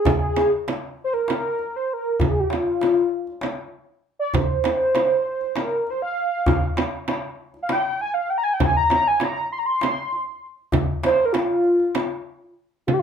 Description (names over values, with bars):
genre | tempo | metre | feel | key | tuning
Turkish makam ensemble | 197 BPM (eighths) | 7/8 | straight | F makam huseyni | A4 = 440 Hz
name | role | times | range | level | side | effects
warm velvety synth lead | melody | 0.0-13.0 s | F4 to C6 | -21 LUFS | equal | chorus
darbuka | percussion | 0.1-12.1 s | none | -25 LUFS | left 1 dB | none
frame drum | percussion | 0.1-13.0 s | none | -25 LUFS | right 4 dB | none
room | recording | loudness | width
wet small room reverb, RT60 0.6 s | heard from further back in the room | -20 LUFS | side -7 dB against mid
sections
0.0-12.9 A section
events
none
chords
none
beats
| 0.07 0.38 0.68 0.99 1.29 1.60 1.90 | 2.21 2.51 2.82 3.12 3.43 3.73 4.04 | 4.34 4.65 4.96 5.26 5.57 5.87 6.17 | 6.48 6.79 7.09 7.39 7.70 8.00 8.31 | 8.61 8.92 9.22 9.53 9.83 10.14 10.44 | 10.74 11.05 11.35 11.66 11.96 12.27 12.57 | 12.88